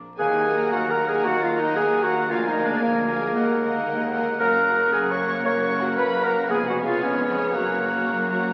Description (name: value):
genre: classical, dramatic, fast romantic movement for symphony orchestra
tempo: 114 BPM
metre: 4/4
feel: rubato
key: Eb minor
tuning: A4 = 440 Hz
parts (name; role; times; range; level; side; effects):
- concert harp; arpeggios; 0.0-8.5 s; F2 to Ab5; -38 LUFS; equal; none
- rich symphonic violin section; melody; 0.2-8.3 s; Bb4 to Db6; -37 LUFS; equal; none
- bright silver concert flute; second line; 0.2-8.3 s; Bb4 to Db6; -34 LUFS; equal; none
- warm clarinet; second line; 0.2-8.3 s; Bb3 to Db5; -26 LUFS; equal; none
- warm oboe; second line; 0.2-8.5 s; Gb5 to Ab5; -31 LUFS; equal; none
- mellow bassoon; accompaniment; 0.2-8.5 s; Bb3 to Cb4; -31 LUFS; equal; none
- bright trombone section; sustained chords; 0.2-8.4 s; Db3 to Ab3; -40 LUFS; equal; none
- mellow French horn section; sustained chords; 0.2-8.4 s; Bb3 to Bb4; -36 LUFS; equal; none
- rich studio double bass section; bass; 0.2-8.5 s; F1 to Eb2; -41 LUFS; equal; none
- rich symphonic cello section; bass; 0.2-8.5 s; D2 to Gb2; -37 LUFS; equal; none
- warm symphonic violin section; second line; 0.5-8.5 s; Db5 to Bb5; -38 LUFS; equal; none
- warm symphonic viola section; accompaniment; 0.5-8.5 s; Bb3 to Bb4; -31 LUFS; equal; none
room: wet scoring stage reverb, RT60 1.4 s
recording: very old 78 rpm record, vinyl crackle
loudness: -22 LUFS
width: mono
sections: 0.2-8.5 A section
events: none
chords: 0.2 Ebm; 2.3 Bb7/D; 3.3 Ebm; 4.4 Gb; 6.5 Db7/F; 7.5 Gb